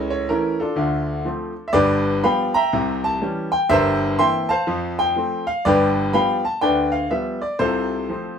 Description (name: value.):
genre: jazz, stride piano.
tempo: 122 BPM.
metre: 4/4.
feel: swing 65% on 8ths.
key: F major.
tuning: A4 = 440 Hz.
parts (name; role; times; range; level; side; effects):
clear grand piano; solo; 0.0-8.4 s; G1 to C6; -18 LUFS; equal; none.
room: moderate studio ambience, RT60 0.5 s.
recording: band playing live in one room.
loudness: -18 LUFS.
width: side -7 dB against mid.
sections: 0.0-8.4 A section.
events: none.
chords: 0.0 A/C#; 0.7 Dm7; 1.7 G7; 2.7 C; 3.7 C7/G; 4.7 F; 5.6 G7; 7.6 F/C.